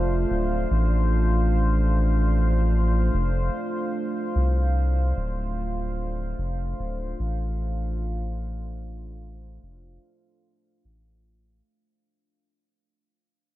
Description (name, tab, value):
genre	ambient dub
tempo	74 BPM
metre	4/4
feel	straight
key	D minor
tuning	A4 = 440 Hz
part	deep dark ambient pad	sustained chords	0.0-11.7 s	A3 to F5	-29 LUFS	right 1 dB	chorus, built-in reverb
part	soft dub sub bass	bass	0.0-11.6 s	D1 to C2	-23 LUFS	equal	none
room	light reverb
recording	none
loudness	-22 LUFS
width	side -15 dB against mid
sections	0.0-11.7 A section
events	fade-out 3.0-11.7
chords	0.0 Dm7